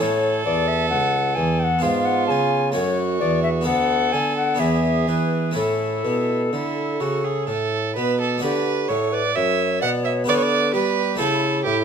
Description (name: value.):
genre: classical, baroque-style sonata movement with continuo.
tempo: 64 BPM.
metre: 3/4.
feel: uneven beats.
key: A major, D major from 8.4 s.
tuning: A4 = 437 Hz.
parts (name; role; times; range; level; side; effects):
mellow tenor recorder; melody; 0.0-11.8 s; E4 to A5; -24 LUFS; left 6 dB; none.
warm violin; second line; 0.0-11.8 s; E4 to F#5; -24 LUFS; right 7 dB; none.
harpsichord; accompaniment; 0.0-11.8 s; C#2 to A4; -25 LUFS; right 1 dB; none.
dark bassoon; bass; 0.0-11.8 s; C#2 to G3; -25 LUFS; right 1 dB; none.
room: light reverb.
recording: none.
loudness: -18 LUFS.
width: side -7 dB against mid.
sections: 0.0-8.4 A section; 8.4-11.8 A section.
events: none.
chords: 0.0 A; 1.8 C#7/G#; 2.7 F#m; 3.7 Bm7/D; 4.6 E7; 5.6 A; 8.4 D; 10.3 Em7/D; 11.2 A7.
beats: | 0.00 0.91 1.83 | 2.75 3.67 4.59 | 5.55 6.52 7.47 | 8.43 9.36 10.28 | 11.20.